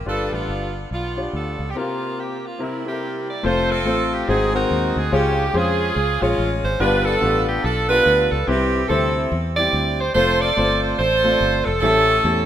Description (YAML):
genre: uptempo gospel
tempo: 143 BPM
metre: 4/4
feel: swing 61% on 8ths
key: F major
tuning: A4 = 440 Hz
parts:
  - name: edgy saxophone section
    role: melody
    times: 0.0-12.5 s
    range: G3 to D5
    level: -20 LUFS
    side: right 2 dB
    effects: none
  - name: fingered electric bass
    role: bass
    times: 0.0-12.5 s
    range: F1 to F2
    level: -24 LUFS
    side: equal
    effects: none
  - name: warm concert grand piano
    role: accompaniment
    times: 0.1-12.5 s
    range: G2 to D5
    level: -22 LUFS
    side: left 2 dB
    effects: none
room: moderate lush hall reverb, RT60 2.5 s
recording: rough home demo mix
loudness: -17 LUFS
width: side -10 dB against mid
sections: 0.0-3.4 A section; 3.4-12.5 B section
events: none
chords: 0.1 G7; 1.8 C7sus4; 2.6 C7; 3.4 F; 4.3 Ab7; 5.1 Db; 6.8 G7; 8.5 C; 10.2 F; 11.8 A7